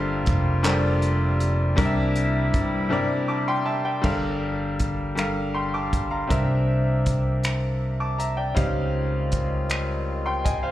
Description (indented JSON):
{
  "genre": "slow six-eight R&B",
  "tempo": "53 BPM (dotted quarters)",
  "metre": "6/8",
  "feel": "straight",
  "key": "unclear",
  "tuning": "A4 = 437 Hz",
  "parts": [
    { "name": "bright grand piano", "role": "accompaniment", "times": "0.0-10.7 s", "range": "C3 to D6", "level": "-25 LUFS", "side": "left 1 dB", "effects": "slapback echo" },
    { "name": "warm woodwind section", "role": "sustained chords", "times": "0.0-4.0, 8.6-10.7 s", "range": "C3 to F4", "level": "-33 LUFS", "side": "left 1 dB", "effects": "none" },
    { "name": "fingered electric bass", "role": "bass", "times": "0.0-10.7 s", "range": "F1 to G2", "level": "-25 LUFS", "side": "equal", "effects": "none" },
    { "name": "cloth-damped thuddy drum kit", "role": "drums", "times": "0.3-10.6 s", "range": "crash cymbal, finger snaps, handclaps, hi-hat, kick drum", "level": "-26 LUFS", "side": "equal", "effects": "none" }
  ],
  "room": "small room ambience",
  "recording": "live gig heard through the venue's PA, club reverb",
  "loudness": "-21 LUFS",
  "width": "side -14 dB against mid",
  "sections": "0.0-4.0 A section; 4.0-10.7 B section",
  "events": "silent gap 2.9-4.0",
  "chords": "0.0 Gm11; 1.8 C7; 4.0 Gm9; 6.3 C9; 8.6 Dbmaj9#11"
}